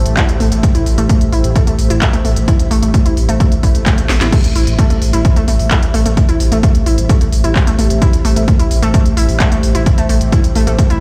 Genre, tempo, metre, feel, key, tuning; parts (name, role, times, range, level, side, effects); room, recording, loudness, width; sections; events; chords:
driving peak-time techno; 130 BPM; 4/4; straight; A minor; A4 = 440 Hz
warm sub bass; bass; 0.0-11.0 s; A1; -18 LUFS; equal; tube saturation, sidechain pumping, low-pass filter
analog drone; drone; 0.0-4.4 s; A2 to A3; -30 LUFS; equal
deep dark ambient pad; texture; 0.0-11.0 s; G4 to E5; -26 LUFS; equal; chorus, built-in reverb, sidechain pumping
techno drum kit; drums; 0.1-11.0 s; crash cymbal, handclaps, hi-hat, snare drum; -24 LUFS; equal; sidechain pumping on hats, sidechain pumping on cymbals
warbly dusty pluck; riff; 0.2-11.0 s; A3 to E4; -21 LUFS; equal; chorus, tube saturation, cassette tape, sidechain pumping, tape echo
electronic kick drum; drums; 0.2-10.9 s; -14 LUFS; equal
swell; sound effects; 3.6-4.3 s; -30 LUFS; equal
little or no reverb; played on a big sound system in a bare room, stone room reverb; -13 LUFS; mono
0.0-4.3 A section; 4.3-11.0 B section
drum fill 4.1; drop 4.3-11.0
0.0 Am